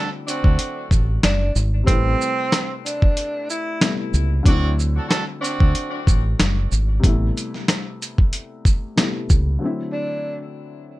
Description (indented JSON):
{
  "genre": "hip hop, boom-bap hip-hop",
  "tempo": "93 BPM",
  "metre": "4/4",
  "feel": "swing 56% on 16ths",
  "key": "unclear",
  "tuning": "A4 = 438 Hz",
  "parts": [
    { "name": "breathy tenor saxophone", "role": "melody", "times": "0.0-4.0, 9.9-10.4 s", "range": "C4 to E4", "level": "-25 LUFS", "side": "right 1 dB", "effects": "high-pass filter, low-pass filter, ping-pong delay" },
    { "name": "dark upright piano", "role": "accompaniment", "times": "0.0-11.0 s", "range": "C3 to B4", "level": "-29 LUFS", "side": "left 2 dB", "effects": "cassette tape, high-pass filter, low-pass filter" },
    { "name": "warm horn section", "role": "stabs", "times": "0.0-6.0 s", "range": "C4 to A4", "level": "-27 LUFS", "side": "right 2 dB", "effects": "high-pass filter, low-pass filter, ping-pong delay" },
    { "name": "dusty soul sampler-style drum kit", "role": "drums", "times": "0.3-9.5 s", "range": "hi-hat, kick drum, shaker, snare drum", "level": "-18 LUFS", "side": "equal", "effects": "overdrive, vintage 12-bit sampler grit" },
    { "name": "deep dub fingered electric bass", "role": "bass", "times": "0.4-9.6 s", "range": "F#1 to D2", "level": "-19 LUFS", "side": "equal", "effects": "none" }
  ],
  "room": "little or no reverb",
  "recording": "none",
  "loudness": "-18 LUFS",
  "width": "side -18 dB against mid",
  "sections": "0.0-9.6 A section; 9.6-11.0 B section",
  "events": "none",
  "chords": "0.0 D7; 1.9 Am9; 4.5 D7; 7.0 Am9; 9.6 D7"
}